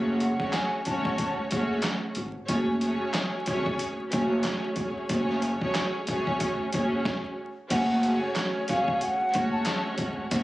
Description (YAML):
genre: hip hop, boom-bap hip-hop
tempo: 92 BPM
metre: 4/4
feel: swing 57% on 16ths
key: F# minor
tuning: A4 = 441 Hz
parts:
  - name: warm symphonic string section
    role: accompaniment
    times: 0.0-10.4 s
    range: G#3 to C#5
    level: -29 LUFS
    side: equal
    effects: cassette tape, high-pass filter, low-pass filter
  - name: upright bass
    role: bass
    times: 0.0-10.4 s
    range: F#1 to G#1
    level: -29 LUFS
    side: equal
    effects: none
  - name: mellow hollow silver concert flute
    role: melody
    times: 0.2-1.3, 7.7-9.8 s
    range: C#5 to A5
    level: -30 LUFS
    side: equal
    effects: high-pass filter, low-pass filter, ping-pong delay
  - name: trip hop sampler-style drum kit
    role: drums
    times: 0.2-10.4 s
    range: crash cymbal, handclaps, hi-hat, kick drum, snare drum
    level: -32 LUFS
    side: equal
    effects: none
room: light reverb, studio reverb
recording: recorded on a phone in the room, club reverb, vinyl crackle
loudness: -25 LUFS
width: side -17 dB against mid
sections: 0.0-7.7 A section; 7.7-10.4 B section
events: stop 7.1-7.7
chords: 0.0 F#madd9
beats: 0.53 1.18 1.84 | 2.49 3.14 3.79 4.45 | 5.10 5.75 6.40 7.05 | 7.71 8.36 9.01 9.66 | 10.31